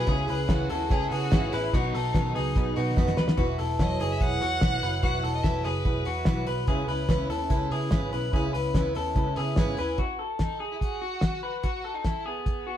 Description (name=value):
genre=jangly indie pop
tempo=145 BPM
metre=4/4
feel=straight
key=E major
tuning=A4 = 439 Hz
part: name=rich violin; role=melody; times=0.0-6.5, 10.4-12.8 s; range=B3 to F#5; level=-34 LUFS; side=right 3 dB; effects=none
part: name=picked plugged-in steel-string acoustic guitar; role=accompaniment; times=0.0-10.0 s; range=B2 to B4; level=-35 LUFS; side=right 4 dB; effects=none
part: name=warbly lo-fi synth keys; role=accompaniment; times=0.0-10.0 s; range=B3 to G#5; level=-33 LUFS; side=equal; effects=chorus
part: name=electric guitar through a small old amp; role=arpeggios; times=0.0-12.8 s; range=F#4 to B4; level=-31 LUFS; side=left 2 dB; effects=none
part: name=vintage muted picked electric bass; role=bass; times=0.0-10.0 s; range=E1 to C#3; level=-31 LUFS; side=equal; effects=none
part: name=cloth-damped thuddy drum kit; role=drums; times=0.1-12.6 s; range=hi-hat, kick drum, ride cymbal, snare drum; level=-26 LUFS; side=equal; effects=none
room=moderate stone room reverb, RT60 1.2 s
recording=band playing live in one room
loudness=-24 LUFS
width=side -10 dB against mid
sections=0.0-3.4 A section; 3.4-10.0 B section; 10.0-12.8 C section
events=drum fill 3.0-3.4; synth keys fill 9.2-10.0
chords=0.1 C#m7; 1.7 B; 3.4 Esus2; 6.7 C#m7; 10.0 B7(no3) (rootless)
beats=| 0.08 0.50 0.91 1.32 | 1.73 2.15 2.56 2.97 | 3.38 3.79 4.21 4.62 | 5.03 5.45 5.86 6.27 | 6.68 7.10 7.51 7.92 | 8.33 8.75 9.16 9.57 | 9.99 10.40 10.81 11.23 | 11.64 12.05 12.47